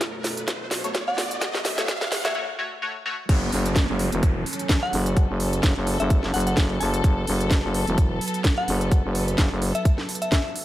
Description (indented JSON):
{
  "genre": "bass house",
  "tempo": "128 BPM",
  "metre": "4/4",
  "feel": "swing 56% on 16ths",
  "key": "F# minor",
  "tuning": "A4 = 440 Hz",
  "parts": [
    { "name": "dark studio string section", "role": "sustained chords", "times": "0.0-10.6 s", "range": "F#2 to A4", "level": "-32 LUFS", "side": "equal", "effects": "sidechain pumping" },
    { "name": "electronic kick drum", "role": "drums", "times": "0.0-10.4 s", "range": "none", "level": "-21 LUFS", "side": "equal", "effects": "high-pass filter on kick, high-pass filter on room" },
    { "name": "garage drum kit", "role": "drums", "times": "0.0-10.6 s", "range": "crash cymbal, hi-hat, snare drum", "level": "-27 LUFS", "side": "equal", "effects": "none" },
    { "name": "riser and downlifter", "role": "sound effects", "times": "0.0-7.0 s", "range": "none", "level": "-33 LUFS", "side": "right 1 dB", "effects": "none" },
    { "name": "band-passed chord stab", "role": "stabs", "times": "0.8-3.1 s", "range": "A3 to C#5", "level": "-31 LUFS", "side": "left 2 dB", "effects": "phaser, ensemble chorus, sidechain pumping, dub echo" },
    { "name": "glassy synth bell", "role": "melody", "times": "1.1-10.6 s", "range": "E5 to A5", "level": "-30 LUFS", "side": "left 1 dB", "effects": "chorus, tremolo, dub echo" },
    { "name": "growling FM bass", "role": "bass", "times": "3.3-9.7 s", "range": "E1 to F#1", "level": "-24 LUFS", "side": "equal", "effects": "tube saturation, sidechain pumping" }
  ],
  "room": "light reverb, digital ambience",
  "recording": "high-pass filter",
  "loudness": "-21 LUFS",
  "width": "side -14 dB against mid",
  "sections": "0.0-3.3 A section; 3.3-10.6 B section",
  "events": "build-up 0.0-3.3; drum fill 0.0-2.4; riser 0.0-2.4; filter sweep on synth stab 0.0-3.3; break 2.4-3.3; drop 3.3-10.6",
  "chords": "0.0 F#m"
}